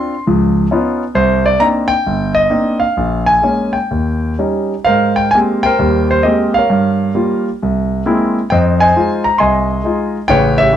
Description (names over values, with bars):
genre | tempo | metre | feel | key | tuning
solo jazz | 132 BPM | 4/4 | swing 66% on 8ths, rubato | unclear | A4 = 441 Hz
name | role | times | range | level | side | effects
warm concert grand piano | solo | 0.0-10.8 s | G1 to C6 | -12 LUFS | equal | none
room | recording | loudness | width
light reverb | none | -12 LUFS | side -10 dB against mid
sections
0.0-4.9 A section; 4.9-10.8 B section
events
none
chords
0.3 Db9; 1.2 Cm9; 3.0 Bbm7; 3.9 Eb7; 4.9 Abmaj9; 6.7 Gm7b5; 7.6 C7b13; 8.5 Fm7